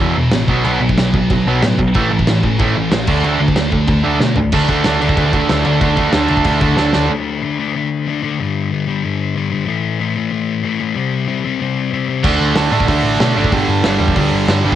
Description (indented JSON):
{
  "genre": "punk rock",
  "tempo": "187 BPM",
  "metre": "4/4",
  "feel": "straight",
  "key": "unclear",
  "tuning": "A4 = 440 Hz",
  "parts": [
    { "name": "overdriven semi-hollow guitar", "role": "riff", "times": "0.0-7.1, 12.2-14.8 s", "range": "E2 to D4", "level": "-17 LUFS", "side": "right 6 dB", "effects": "cassette tape" },
    { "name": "scooped high-gain guitar", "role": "riff", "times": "0.0-7.1, 12.2-14.8 s", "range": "E2 to D4", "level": "-23 LUFS", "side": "right 1 dB", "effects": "distortion, cassette tape" },
    { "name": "sludgy distorted guitar", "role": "riff", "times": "0.0-14.8 s", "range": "E2 to D4", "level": "-19 LUFS", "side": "left 7 dB", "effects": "overdrive, cassette tape" },
    { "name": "hollow-body short-scale picked electric bass", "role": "bass", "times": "0.0-7.1, 12.2-14.8 s", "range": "E1 to B2", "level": "-19 LUFS", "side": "equal", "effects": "none" },
    { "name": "loose indie drum kit", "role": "drums", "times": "0.0-7.0, 12.2-14.8 s", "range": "crash cymbal, hi-hat, kick drum, snare drum, toms", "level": "-19 LUFS", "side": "equal", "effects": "cassette tape" }
  ],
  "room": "little or no reverb",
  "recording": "home recording on cassette",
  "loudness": "-13 LUFS",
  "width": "side -11 dB against mid",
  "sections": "0.0-4.5 A section; 4.5-7.1 B section; 7.1-14.8 C section",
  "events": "drum fill 4.2-4.5, 6.8-7.1",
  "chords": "0.5 B5; 1.9 A5; 3.1 D5; 8.4 G5; 9.7 A5; 11.0 C5; 12.2 D5; 13.5 G5"
}